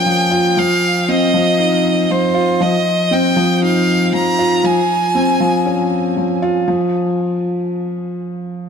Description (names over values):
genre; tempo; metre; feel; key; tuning
electronica; 118 BPM; 4/4; straight; unclear; A4 = 444 Hz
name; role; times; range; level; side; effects
clear violin; melody; 0.0-6.2 s; C5 to Bb5; -17 LUFS; right 1 dB; none
felt-muted upright piano; riff; 0.0-8.7 s; F3 to F4; -15 LUFS; left 1 dB; none
room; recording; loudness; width
moderate huge ambient reverb, RT60 5.1 s; none; -13 LUFS; side -6 dB against mid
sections
0.0-6.7 A section; 6.7-8.7 B section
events
drop 0.0-6.7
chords
0.0 Bbm; 0.6 F5; 4.6 Dbmaj7; 6.7 N.C.